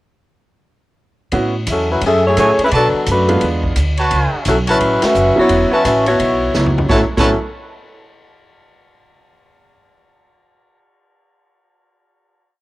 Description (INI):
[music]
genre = jazz, big band swing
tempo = 173 BPM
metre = 4/4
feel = swing 63% on 8ths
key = A major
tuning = A4 = 440 Hz
[part]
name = clear baby grand piano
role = accompaniment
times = 1.3-7.3 s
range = F#3 to G#4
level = -19 LUFS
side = right 2 dB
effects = none
[part]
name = upright bass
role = bass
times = 1.3-7.3 s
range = E1 to B2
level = -19 LUFS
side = equal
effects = none
[part]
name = swinging big-band drum kit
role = drums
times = 1.3-7.2 s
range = crash cymbal, hi-hat, kick drum, ride cymbal, snare drum, toms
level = -23 LUFS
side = equal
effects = none
[part]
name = dark saxophone section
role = melody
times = 1.7-7.4 s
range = F#3 to E5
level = -14 LUFS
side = left 1 dB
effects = cassette tape
[part]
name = bright trumpet section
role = stabs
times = 2.4-7.3 s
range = F#4 to A5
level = -20 LUFS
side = right 1 dB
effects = none
[sound]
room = light reverb, small room ambience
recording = home recording on cassette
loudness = -12 LUFS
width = side -18 dB against mid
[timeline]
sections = 1.3-6.9 A section; 6.9-8.3 final chord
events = band accent 5.0; drum fill 6.5-6.9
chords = 1.3 A69; 2.0 F#m9; 2.7 Bm7; 3.4 E7b9; 4.1 A69